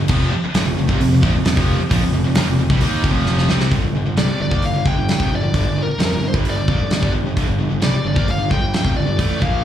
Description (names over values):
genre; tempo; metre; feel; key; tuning
hard rock; 132 BPM; 4/4; straight; G minor; A4 = 441 Hz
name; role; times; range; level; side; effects
high-gain distorted guitar; riff; 0.0-9.6 s; F2 to Eb4; -24 LUFS; right 10 dB; distortion, slapback echo
scooped high-gain guitar; riff; 0.0-9.6 s; F2 to Eb4; -25 LUFS; left 7 dB; distortion
tight distorted guitar; riff; 0.0-3.7 s; F2 to Eb4; -26 LUFS; equal; distortion
fuzz picked electric bass; bass; 0.0-9.6 s; F1 to F2; -20 LUFS; equal; overdrive
big rock drum kit; drums; 0.1-9.5 s; crash cymbal, hi-hat, kick drum, snare drum; -20 LUFS; equal; none
bluesy overdriven lead guitar; melody; 4.2-9.6 s; Bb4 to G5; -24 LUFS; left 4 dB; distortion, slapback echo, digital delay
room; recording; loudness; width
small room ambience; live gig heard through the venue's PA, club reverb; -15 LUFS; side -10 dB against mid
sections
0.0-3.7 A section; 3.7-9.6 B section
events
drum fill 3.3-3.7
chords
0.1 F5; 3.7 Gm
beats
| 0.10 0.56 1.01 1.46 | 1.91 2.37 2.82 3.27 | 3.73 4.18 4.64 5.09 | 5.54 6.00 6.46 6.91 | 7.37 7.82 8.28 8.73 | 9.19